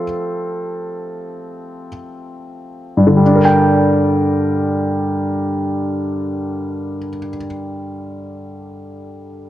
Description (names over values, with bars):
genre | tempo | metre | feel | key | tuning
pop | free time | none | none | G minor | A4 = 439 Hz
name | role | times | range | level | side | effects
clear concert grand piano | accompaniment | 0.0-9.5 s | G2 to G5 | -17 LUFS | equal | none
room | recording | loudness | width
light reverb | worn, warbling old tape, cassette tape, warbly pitch drift | -15 LUFS | side -13 dB against mid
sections
0.0-3.2 A section; 3.2-8.6 B section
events
slowing down 0.0-3.2; grand piano solo 0.0-3.2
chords
0.0 F; 3.2 Gm